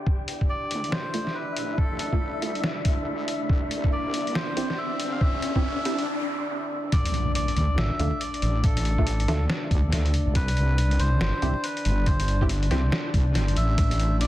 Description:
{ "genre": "deep dubstep", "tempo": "140 BPM", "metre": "4/4", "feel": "swing 61% on 16ths, half-time", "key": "unclear", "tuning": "A4 = 440 Hz", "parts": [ { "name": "dark analog pad", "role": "sustained chords", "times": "0.0-14.3 s", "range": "D4 to D5", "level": "-34 LUFS", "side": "left 1 dB", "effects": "chorus" }, { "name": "wind-like tuned noise texture", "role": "texture", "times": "0.0-6.1 s", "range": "E4 to E5", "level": "-36 LUFS", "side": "equal", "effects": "built-in reverb" }, { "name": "electronic kick drum", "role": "drums", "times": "0.1-13.9 s", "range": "none", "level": "-24 LUFS", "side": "equal", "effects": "none" }, { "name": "riser, noise sweep and impact", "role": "sound effects", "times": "1.9-8.6 s", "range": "none", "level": "-32 LUFS", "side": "left 1 dB", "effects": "none" }, { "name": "trip hop sampler-style drum kit", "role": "drums", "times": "0.3-14.3 s", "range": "hi-hat, ride cymbal, snare drum", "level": "-31 LUFS", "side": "equal", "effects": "none" }, { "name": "melodica", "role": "melody", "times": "0.5-14.3 s", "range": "A4 to F5", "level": "-32 LUFS", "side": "equal", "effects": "dub echo" }, { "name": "wobble bass", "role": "bass", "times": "0.7-14.3 s", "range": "G1 to D2", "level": "-25 LUFS", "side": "equal", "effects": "chorus, high-pass filter" }, { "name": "filtered dub chord stab", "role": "stabs", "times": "1.1-12.8 s", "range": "A3 to G4", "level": "-35 LUFS", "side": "right 2 dB", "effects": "ensemble chorus, cassette tape, dub echo" } ], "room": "digital ambience", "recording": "dense, heavily limited modern master", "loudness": "-22 LUFS", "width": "side -14 dB against mid", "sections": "0.1-6.9 A section; 6.9-14.3 B section", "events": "build-up 0.1-6.9; filter sweep on synth stab 0.1-6.9; riser 1.9-6.1; noise sweep 5.2-6.9; break 6.1-6.9; drop 6.9-14.3; impact 6.9-8.6", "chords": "0.1 D5; 3.5 C; 6.9 D5; 10.4 C5", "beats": "| 0.07 0.50 0.92 1.35 | 1.78 2.21 2.64 3.07 | 3.50 3.92 4.35 4.78 | 5.21 5.64 6.07 6.50 | 6.92 7.35 7.78 8.21 | 8.64 9.07 9.50 9.92 | 10.35 10.78 11.21 11.64 | 12.07 12.50 12.92 13.35 | 13.78 14.21" }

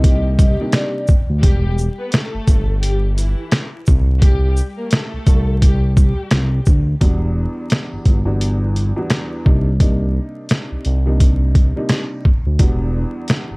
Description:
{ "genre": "hip hop, boom-bap hip-hop", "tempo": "86 BPM", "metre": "4/4", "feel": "swing 60% on 16ths", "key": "E minor", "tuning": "A4 = 442 Hz", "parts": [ { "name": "vibraphone with soft mallets", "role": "melody", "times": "0.0-1.1 s", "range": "D5 to Eb5", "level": "-26 LUFS", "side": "left 1 dB", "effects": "high-pass filter, low-pass filter, tape echo" }, { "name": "dark upright piano", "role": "accompaniment", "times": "0.0-1.1, 7.0-13.6 s", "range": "E2 to F#4", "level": "-24 LUFS", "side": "equal", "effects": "cassette tape, high-pass filter, low-pass filter" }, { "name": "warm studio string section", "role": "stabs", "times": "0.0-6.5 s", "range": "E3 to B4", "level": "-28 LUFS", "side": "left 1 dB", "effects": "high-pass filter, low-pass filter, tape echo" }, { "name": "smooth synth bass", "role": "bass", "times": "0.0-13.6 s", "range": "E1 to D2", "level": "-17 LUFS", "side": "equal", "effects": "tube saturation" }, { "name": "trip hop sampler-style drum kit", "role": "drums", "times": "0.0-13.5 s", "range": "hi-hat, kick drum, shaker, snare drum", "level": "-14 LUFS", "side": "equal", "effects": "none" } ], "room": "small room ambience", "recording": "dry, gritty hardware recording, vinyl crackle", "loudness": "-14 LUFS", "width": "side -29 dB against mid", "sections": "0.0-7.0 A section; 7.0-13.6 B section", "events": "none", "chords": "0.0 Cm9; 1.4 Em; 3.9 C5; 7.0 Em9; 9.5 Cm9; 12.6 Em9", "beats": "0.04 0.73 | 1.43 2.13 2.83 3.53 | 4.22 4.92 5.62 6.32 | 7.01 7.71 8.41 9.11 | 9.80 10.50 11.20 11.90 | 12.60 13.29" }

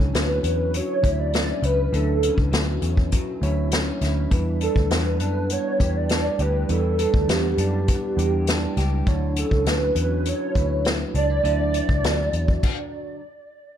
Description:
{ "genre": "indie pop, bedroom pop", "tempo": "101 BPM", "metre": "4/4", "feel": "straight", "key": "D major", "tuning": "A4 = 439 Hz", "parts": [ { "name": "electric guitar through a small old amp", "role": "accompaniment", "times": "0.0-13.2 s", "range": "D3 to G4", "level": "-31 LUFS", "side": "left 3 dB", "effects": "ensemble chorus, vibrato effect" }, { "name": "mellow tine electric piano", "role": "accompaniment", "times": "0.0-12.7 s", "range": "F#3 to E5", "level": "-30 LUFS", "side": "right 4 dB", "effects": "slow stereo tremolo" }, { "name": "vintage muted picked electric bass", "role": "bass", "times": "0.0-12.6 s", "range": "C#2 to F#2", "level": "-24 LUFS", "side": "equal", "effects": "none" }, { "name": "unplugged drum kit", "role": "drums", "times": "0.1-12.8 s", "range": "crash cymbal, hi-hat, kick drum, snare drum", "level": "-24 LUFS", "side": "left 1 dB", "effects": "none" }, { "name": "hollow clarinet-like synth lead", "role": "melody", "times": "0.2-13.2 s", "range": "G4 to D5", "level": "-25 LUFS", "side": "right 2 dB", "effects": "phaser, ensemble chorus, tape echo" } ], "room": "small room ambience", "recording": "none", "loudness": "-20 LUFS", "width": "side -10 dB against mid", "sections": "0.0-13.8 A section", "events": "stop 12.6-13.8", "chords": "0.0 Dmaj9; 4.3 Em7; 9.1 Dmaj9", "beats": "0.14 0.74 1.33 | 1.93 2.53 3.12 3.72 | 4.32 4.91 5.50 6.10 | 6.70 7.29 7.88 8.48 | 9.07 9.67 10.26 10.85 | 11.45 12.04 12.63" }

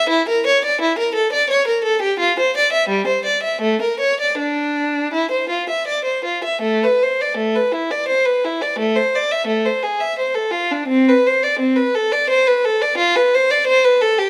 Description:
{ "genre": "classical, baroque-style suite movement for unaccompanied violin", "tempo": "76-90 BPM", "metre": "3/4", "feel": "rubato", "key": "D minor, A minor from 6.6 s", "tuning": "A4 = 440 Hz", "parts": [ { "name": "rich violin", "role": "solo", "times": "0.0-14.3 s", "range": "G3 to E5", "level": "-18 LUFS", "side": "equal", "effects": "none" } ], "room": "moderate recital hall reverb, RT60 1.5 s", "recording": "close, detailed microphones", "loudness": "-18 LUFS", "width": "mono", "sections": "0.0-6.6 A section; 6.6-14.3 A section", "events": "none", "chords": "none", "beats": "| 0.06 0.78 1.47 | 2.17 2.88 3.61 | 4.36 5.12 5.87 | 6.64 7.37 8.08 | 8.78 9.47 10.18 | 10.91 11.62 12.31 | 13.01 13.68" }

